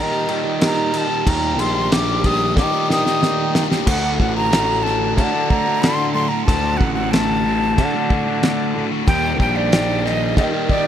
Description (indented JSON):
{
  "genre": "psychedelic rock",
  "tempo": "92 BPM",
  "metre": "4/4",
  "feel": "straight",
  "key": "unclear",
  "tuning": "A4 = 440 Hz",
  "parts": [
    { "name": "breathy silver concert flute", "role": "melody", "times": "0.0-10.9 s", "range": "D5 to Eb6", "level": "-22 LUFS", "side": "left 1 dB", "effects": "analog delay" },
    { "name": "tonewheel organ", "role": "sustained chords", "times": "0.0-10.9 s", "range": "A3 to Bb4", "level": "-31 LUFS", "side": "right 8 dB", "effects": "none" },
    { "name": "crunchy overdriven guitar", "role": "riff", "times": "0.0-10.9 s", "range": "D2 to G4", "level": "-22 LUFS", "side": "left 1 dB", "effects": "phaser" },
    { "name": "fuzz picked electric bass", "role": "bass", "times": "0.0-10.9 s", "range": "A1 to Eb3", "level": "-22 LUFS", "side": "equal", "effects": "overdrive" },
    { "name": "cloth-damped thuddy drum kit", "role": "drums", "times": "0.3-10.8 s", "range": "crash cymbal, kick drum, snare drum", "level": "-21 LUFS", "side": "equal", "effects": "none" }
  ],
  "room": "light reverb",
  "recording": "none",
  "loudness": "-16 LUFS",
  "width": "side -10 dB against mid",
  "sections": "0.0-3.9 A section; 3.9-10.9 B section",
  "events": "flute solo 0.0-3.9; drum fill 2.6-3.9",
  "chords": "0.0 Eb; 3.9 D; 9.1 Eb",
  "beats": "0.62 | 1.27 1.92 2.57 3.23 | 3.88 4.53 5.18 5.83 | 6.47 7.12 7.77 8.42 | 9.07 9.72 10.36"
}